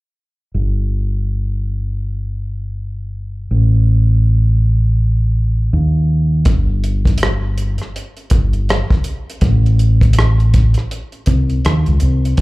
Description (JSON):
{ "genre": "R&B, neo-soul", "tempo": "81 BPM", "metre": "4/4", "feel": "swing 61% on 16ths", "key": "A minor", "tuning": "A4 = 439 Hz", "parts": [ { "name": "fingered electric bass", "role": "bass", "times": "0.5-12.4 s", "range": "G1 to D#2", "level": "-14 LUFS", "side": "equal", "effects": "none" }, { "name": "warm soul drum kit", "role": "drums", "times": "6.5-12.4 s", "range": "hi-hat, kick drum, rim click", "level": "-16 LUFS", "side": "equal", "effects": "none" } ], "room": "little or no reverb", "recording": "live gig heard through the venue's PA, club reverb", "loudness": "-13 LUFS", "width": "side -21 dB against mid", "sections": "0.5-6.5 A section; 6.5-12.4 B section", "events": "none", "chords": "none" }